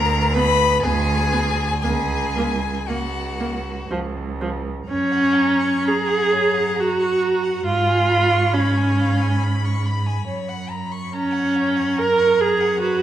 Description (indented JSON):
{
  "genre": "classical, slow romantic movement for string quartet",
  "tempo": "57-74 BPM",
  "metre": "3/4",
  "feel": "rubato",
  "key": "F# major",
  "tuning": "A4 = 440 Hz",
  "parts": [
    { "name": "rich violin", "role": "melody", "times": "0.0-13.0 s", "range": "F#5 to B5", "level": "-28 LUFS", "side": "left 8 dB", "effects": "none" },
    { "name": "rich violin", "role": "second line", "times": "0.0-13.0 s", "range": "F#4 to C#6", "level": "-28 LUFS", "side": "left 1 dB", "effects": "none" },
    { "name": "rich cello", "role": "bass", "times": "0.0-13.0 s", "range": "C#2 to G#2", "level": "-24 LUFS", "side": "right 2 dB", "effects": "none" },
    { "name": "rich viola", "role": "accompaniment", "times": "0.4-13.0 s", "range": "E#3 to A#4", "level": "-19 LUFS", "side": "right 2 dB", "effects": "none" }
  ],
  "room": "wet recital hall reverb, RT60 1.5 s",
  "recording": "recorded in a church or concert hall",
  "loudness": "-18 LUFS",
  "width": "side -11 dB against mid",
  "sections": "0.0-4.9 A section; 4.9-13.0 B section",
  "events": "none",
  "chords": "0.0 Bm/D; 1.8 F#/C#; 3.9 C#; 4.9 F#; 7.6 C#7/G#; 10.3 F#",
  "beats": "0.84 | 1.83 2.88 3.89 | 4.88 5.86 6.77 | 7.64 8.52 9.41 | 10.26 11.12 11.98 | 12.81"
}